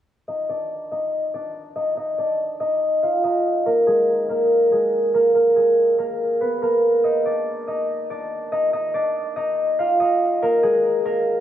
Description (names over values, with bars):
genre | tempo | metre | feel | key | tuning
hip hop | 142 BPM | 4/4 | half-time | unclear | A4 = 440 Hz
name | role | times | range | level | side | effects
concert harp | melody | 0.3-11.4 s | Ab3 to F5 | -18 LUFS | equal | low-pass filter
room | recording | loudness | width
moderate lush hall reverb, RT60 2.9 s | none | -18 LUFS | side -11 dB against mid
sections
0.3-11.4 A section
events
filter sweep on harp 0.3-11.4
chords
0.3 Dm; 3.7 Absus2; 7.0 Dm; 10.4 Absus2